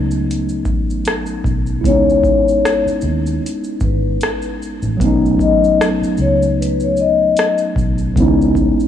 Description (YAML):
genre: lo-fi hip hop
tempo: 76 BPM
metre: 4/4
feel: swing 57% on 16ths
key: unclear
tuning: A4 = 440 Hz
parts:
  - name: mellow tine electric piano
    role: accompaniment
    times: 0.0-8.9 s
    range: D#3 to E4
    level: -18 LUFS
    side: equal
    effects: medium stereo tremolo, cassette tape, low-pass filter
  - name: vintage muted fingered electric bass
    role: bass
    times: 0.0-8.7 s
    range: G#1 to D#2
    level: -21 LUFS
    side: right 1 dB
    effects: tube saturation
  - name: booming analog drum machine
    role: drums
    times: 0.1-8.9 s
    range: hi-hat, kick drum, rim click, shaker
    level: -20 LUFS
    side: equal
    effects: none
  - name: vibraphone with soft mallets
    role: melody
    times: 1.9-7.6 s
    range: B4 to D#5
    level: -16 LUFS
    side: left 5 dB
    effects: low-pass filter, analog delay
room: digital ambience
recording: dry, gritty hardware recording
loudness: -13 LUFS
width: side -10 dB against mid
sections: 0.0-8.9 A section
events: none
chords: 0.0 B9; 1.8 C#m9; 5.0 B9; 8.2 C#m9